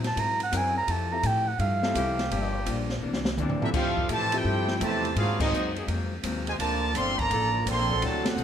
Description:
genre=jazz, big band swing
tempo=168 BPM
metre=4/4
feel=swing 66% on 8ths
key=F major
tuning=A4 = 438 Hz
part: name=vintage hollow-body jazz guitar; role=accompaniment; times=0.0-8.4 s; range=G2 to Bb4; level=-35 LUFS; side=left 4 dB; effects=none
part: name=upright bass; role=bass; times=0.0-8.4 s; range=G1 to Bb2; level=-30 LUFS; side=equal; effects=none
part: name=open jazz drum kit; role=drums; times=0.0-8.4 s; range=crash cymbal, hi-hat, kick drum, ride cymbal, snare drum, toms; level=-32 LUFS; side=right 1 dB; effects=none
part: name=breathy clarinet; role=melody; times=0.1-2.6 s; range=F5 to Bb5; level=-28 LUFS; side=right 2 dB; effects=none
part: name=clear trombone section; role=sustained chords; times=0.5-8.4 s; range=E3 to Bb4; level=-36 LUFS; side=left 2 dB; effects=none
part: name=warm concert grand piano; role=accompaniment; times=1.1-5.5, 8.0-8.2 s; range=F3 to A4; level=-35 LUFS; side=left 7 dB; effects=none
part: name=clear trumpet section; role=melody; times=3.6-8.4 s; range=C4 to C6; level=-28 LUFS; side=right 1 dB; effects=none
part: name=clear trombone section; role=second line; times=3.6-8.4 s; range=C3 to G4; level=-32 LUFS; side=right 4 dB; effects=none
room=moderate large studio reverb, RT60 1.3 s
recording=none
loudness=-24 LUFS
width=side -9 dB against mid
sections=0.0-3.7 A section; 3.7-8.4 B section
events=clarinet solo 0.0-3.7; drum fill 3.0-3.7; band accent 5.3, 8.2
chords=0.0 Gb7#11; 0.9 Fmaj9; 2.3 Gm7; 3.0 C9; 3.7 Fmaj9; 5.2 Ab9; 6.6 Bbmaj7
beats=0.17 0.52 | 0.88 1.24 1.59 1.95 | 2.31 2.66 3.02 3.38 | 3.73 4.09 4.45 4.81 | 5.16 5.52 5.88 6.23 | 6.59 6.95 7.30 7.66 | 8.02 8.38

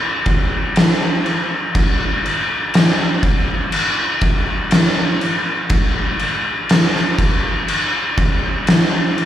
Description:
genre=metal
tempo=61 BPM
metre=4/4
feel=straight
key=none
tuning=none
part: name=oversized low-tuned drum kit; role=drums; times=0.3-9.3 s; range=crash cymbal, kick drum, snare drum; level=-14 LUFS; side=equal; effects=none
room=moderate club reverb, RT60 0.7 s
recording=live gig heard through the venue's PA, club reverb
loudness=-14 LUFS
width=side -11 dB against mid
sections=0.0-9.3 A section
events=none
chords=none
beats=0.76 | 1.75 2.74 3.73 4.72 | 5.71 6.70 7.69 8.68

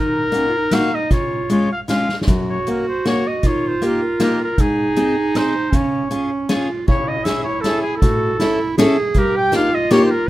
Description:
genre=alpine folk, alpine dance band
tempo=157 BPM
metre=3/4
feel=straight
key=Db major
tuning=A4 = 439 Hz
part: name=clear trumpet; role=melody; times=0.0-10.3 s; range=Ab4 to G5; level=-22 LUFS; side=left 1 dB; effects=none
part: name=bright clarinet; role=second line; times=0.0-10.3 s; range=Db4 to G#4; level=-21 LUFS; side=right 4 dB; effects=none
part: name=picked steel-string acoustic guitar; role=accompaniment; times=0.0-10.1 s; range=Gb2 to A4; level=-20 LUFS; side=left 2 dB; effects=none
part: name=soft-mallet drum kit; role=drums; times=0.3-10.0 s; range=crash cymbal, hi-hat, kick drum, snare drum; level=-22 LUFS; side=equal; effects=none
room=light reverb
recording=rough home demo mix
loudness=-16 LUFS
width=side -16 dB against mid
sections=0.0-6.9 A section; 6.9-10.3 B section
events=drum fill 2.1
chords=0.0 Ebm; 1.1 Db; 2.3 Gb; 3.4 Eb; 4.6 Ab; 5.7 Db; 6.9 C#m; 8.0 A; 9.2 D#/G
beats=0.33 0.72 | 1.11 1.50 1.89 | 2.28 2.67 3.05 | 3.44 3.82 4.20 | 4.59 4.97 5.35 | 5.73 6.12 6.50 | 6.89 7.27 7.65 | 8.03 8.40 8.78 | 9.15 9.53 9.90 | 10.28

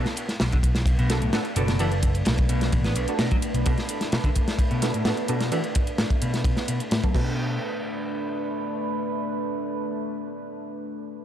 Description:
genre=breakbeat, breaks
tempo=129 BPM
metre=4/4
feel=straight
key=unclear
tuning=A4 = 440 Hz
part: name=deep dark ambient pad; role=sustained chords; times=0.7-10.7 s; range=A3 to B4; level=-30 LUFS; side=right 1 dB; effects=chorus, built-in reverb, vintage 12-bit sampler grit, sidechain pumping
part: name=clean electric guitar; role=riff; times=0.0-7.6 s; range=A2 to B3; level=-28 LUFS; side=left 1 dB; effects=overdrive, low-pass filter
part: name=orchestra-hit-like synth stab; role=stabs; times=0.0-10.7 s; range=B3 to A4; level=-32 LUFS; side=right 3 dB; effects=built-in reverb, dub echo
part: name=crunchy breakbeat drum kit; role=drums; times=0.1-7.2 s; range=crash cymbal, kick drum, ride cymbal, snare drum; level=-25 LUFS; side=equal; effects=none
part: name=electronic hi-hat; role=drums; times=0.1-7.1 s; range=none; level=-35 LUFS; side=equal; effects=none
part: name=picked electric bass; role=bass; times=0.4-3.6 s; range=F#1 to B1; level=-25 LUFS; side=equal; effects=none
room=light reverb, small room ambience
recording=dark, warm production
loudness=-22 LUFS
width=side -10 dB against mid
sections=0.0-7.4 A section; 7.4-11.1 B section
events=filter sweep on clean electric guitar 0.0-7.4; filter sweep on synth stab 0.0-7.4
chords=0.0 Bm7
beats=0.40 0.87 1.33 | 1.80 2.26 2.73 3.19 | 3.66 4.12 4.59 5.05 | 5.52 5.98 6.45 6.91 | 7.38 7.84 8.31 8.77 | 9.24 9.70 10.17 10.63

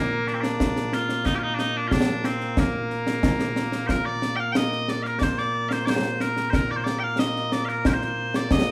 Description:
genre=scottish traditional, Scottish pipe music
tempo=91 BPM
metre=2/4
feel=straight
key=Bb major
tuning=A4 = 440 Hz
part: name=loud bright bagpipes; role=melody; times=0.0-8.7 s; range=Bb2 to G5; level=-27 LUFS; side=equal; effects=none
part: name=concert snare drum and concert bass drum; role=drums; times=0.3-8.7 s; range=none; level=-27 LUFS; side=equal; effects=none
room=moderate large studio reverb, RT60 0.9 s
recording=band playing live in one room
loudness=-25 LUFS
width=mono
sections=0.0-3.9 A section; 3.9-8.7 B section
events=none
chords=none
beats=0.60 | 1.26 1.92 | 2.58 3.23 | 3.90 4.55 | 5.21 5.87 | 6.53 7.19 | 7.85 8.51

